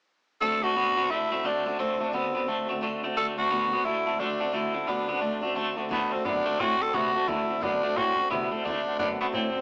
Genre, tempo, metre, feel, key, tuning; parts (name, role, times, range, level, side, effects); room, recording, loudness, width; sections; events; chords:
rockabilly; 175 BPM; 4/4; swing 62% on 8ths; D mixolydian; A4 = 441 Hz
growling tenor saxophone; melody; 0.4-9.6 s; B3 to A4; -29 LUFS; equal
picked steel-string acoustic guitar; accompaniment; 0.4-9.6 s; D3 to A4; -37 LUFS; equal
twangy electric guitar; riff; 0.4-9.6 s; D3 to C4; -32 LUFS; equal; harmonic tremolo
upright bass; bass; 5.9-9.6 s; D2 to C3; -38 LUFS; equal
moderate studio reverb, RT60 0.8 s; band playing live in one room, small speaker sound; -27 LUFS; mono
0.4-5.9 A section; 5.9-9.6 B section
0.4 D7